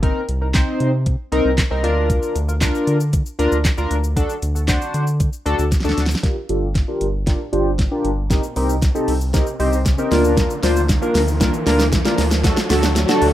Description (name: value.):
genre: dance-pop.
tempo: 116 BPM.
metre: 4/4.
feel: straight.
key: G minor.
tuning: A4 = 440 Hz.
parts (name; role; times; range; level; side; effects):
chorused polysynth; accompaniment; 0.0-13.3 s; A3 to C5; -20 LUFS; left 1 dB; sidechain pumping, low-pass filter.
round analog bass; bass; 0.0-13.3 s; G1 to D3; -20 LUFS; equal; sidechain pumping.
smooth R&B drum kit; drums; 0.0-13.3 s; handclaps, hi-hat, kick drum, shaker, snare drum; -19 LUFS; equal; none.
riser; sound effects; 8.0-13.3 s; none; -27 LUFS; equal; none.
warm analog pad; sustained chords; 10.4-13.3 s; D3 to Bb4; -27 LUFS; right 1 dB; none.
room: light reverb.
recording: rough home demo mix.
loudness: -16 LUFS.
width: side -13 dB against mid.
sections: 0.0-6.2 A section; 6.2-13.3 B section.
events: drum fill 5.7-6.2, 6.2-13.3; build-up 6.2-13.3; filter sweep 6.2-13.3; riser 8.0-13.3.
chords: 0.0 Cm7; 1.8 Bb/D; 4.2 D; 6.2 Gm7; 8.3 Cm7; 10.1 Bb/D; 12.4 D.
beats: | 0.03 0.55 1.06 1.58 | 2.10 2.62 3.13 3.65 | 4.17 4.68 5.20 5.72 | 6.24 6.75 7.27 7.79 | 8.30 8.82 9.34 9.86 | 10.37 10.89 11.41 11.93 | 12.44 12.96.